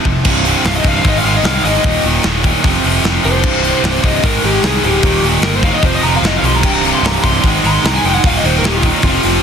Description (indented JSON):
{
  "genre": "hard rock",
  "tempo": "150 BPM",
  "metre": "4/4",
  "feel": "straight",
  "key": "C minor",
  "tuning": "A4 = 439 Hz",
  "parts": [
    { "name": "cranked stack guitar", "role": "riff", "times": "0.0-9.4 s", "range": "C2 to Ab3", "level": "-18 LUFS", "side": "right 12 dB", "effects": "overdrive" },
    { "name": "scooped high-gain guitar", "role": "riff", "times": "0.0-9.4 s", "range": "C2 to Ab3", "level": "-18 LUFS", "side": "left 12 dB", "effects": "distortion" },
    { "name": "tight distorted guitar", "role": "riff", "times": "0.0-9.4 s", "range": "C2 to Ab3", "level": "-20 LUFS", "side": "equal", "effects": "distortion" },
    { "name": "picked electric bass", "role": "bass", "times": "0.1-9.4 s", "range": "C1 to C2", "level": "-18 LUFS", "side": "equal", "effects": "none" },
    { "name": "tight metal drum kit", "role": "drums", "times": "0.1-9.3 s", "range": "crash cymbal, hi-hat, kick drum, snare drum", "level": "-16 LUFS", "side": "equal", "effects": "none" },
    { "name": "lead guitar through a small cranked amp", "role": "melody", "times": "0.7-9.4 s", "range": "Eb4 to C6", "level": "-18 LUFS", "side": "left 2 dB", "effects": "overdrive, plate reverb" }
  ],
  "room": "light reverb, small room ambience",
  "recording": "dense, heavily limited modern master",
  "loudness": "-10 LUFS",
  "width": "side -7 dB against mid",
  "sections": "0.2-9.4 A section",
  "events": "lead electric guitar solo 0.2-9.4",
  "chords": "0.2 C5; 1.0 Ab; 1.8 Eb5; 2.6 F5; 3.4 C5; 4.2 Ab; 5.0 Eb; 5.8 F5; 6.6 C5; 7.4 Ab; 8.2 Eb5"
}